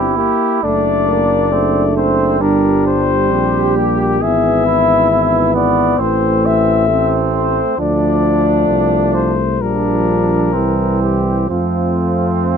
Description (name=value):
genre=classical, brass quintet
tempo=67 BPM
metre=4/4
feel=rubato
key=unclear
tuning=A4 = 439 Hz
part: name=mellow cornet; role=melody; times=0.0-12.6 s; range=F4 to E5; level=-17 LUFS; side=left 10 dB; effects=none
part: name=mellow trumpet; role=second line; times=0.0-12.6 s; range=B3 to G#4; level=-19 LUFS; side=right 10 dB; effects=none
part: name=bright trombone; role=accompaniment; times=0.0-12.6 s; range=E3 to Bb3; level=-20 LUFS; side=right 4 dB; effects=none
part: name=dark French horn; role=accompaniment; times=0.0-12.6 s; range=G3 to D4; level=-21 LUFS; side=left 3 dB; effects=none
part: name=mellow bass trombone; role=bass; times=0.0-12.6 s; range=F#1 to F2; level=-19 LUFS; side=right 2 dB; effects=none
room=little or no reverb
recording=close, detailed microphones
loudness=-12 LUFS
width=side -7 dB against mid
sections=0.0-12.6 A section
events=none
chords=0.0 Gm; 0.6 D7/F#; 2.4 Gm; 4.2 E/G#; 6.0 Am; 7.8 Dm; 9.6 Gm7/Bb; 10.5 C7; 11.5 F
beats=| 0.64 1.53 2.41 3.30 | 4.21 5.11 6.00 6.89 | 7.79 8.69 9.60 10.54 | 11.50 12.47